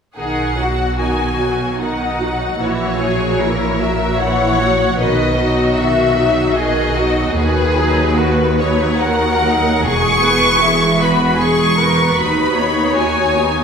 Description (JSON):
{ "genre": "classical, slow romantic movement for string orchestra", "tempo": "76 BPM", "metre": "3/4", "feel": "rubato", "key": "B major", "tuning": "A4 = 442 Hz", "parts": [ { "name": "rich symphonic violin section", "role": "melody", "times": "0.2-13.6 s", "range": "B4 to C#6", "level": "-18 LUFS", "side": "left 3 dB", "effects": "none" }, { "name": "clear symphonic violin section", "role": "second line", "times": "0.2-13.6 s", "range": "D#4 to C#5", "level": "-20 LUFS", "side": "left 2 dB", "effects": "none" }, { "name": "rich symphonic viola section", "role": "accompaniment", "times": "0.2-13.6 s", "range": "D#3 to B4", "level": "-20 LUFS", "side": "right 1 dB", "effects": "none" }, { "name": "clear symphonic double bass section", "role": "bass", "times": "0.2-13.6 s", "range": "E1 to D#2", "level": "-22 LUFS", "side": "right 2 dB", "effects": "none" }, { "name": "rich symphonic cello section", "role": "bass", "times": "0.2-13.6 s", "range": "D#2 to B2", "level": "-22 LUFS", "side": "right 2 dB", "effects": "none" } ], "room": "wet recital hall reverb, RT60 1.6 s", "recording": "recorded in a church or concert hall", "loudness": "-13 LUFS", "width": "side -6 dB against mid", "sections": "0.2-13.6 A section", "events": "none", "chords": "0.2 B; 2.6 F#7/A#; 5.0 B; 7.4 B/D#; 9.8 E; 12.2 B/D#" }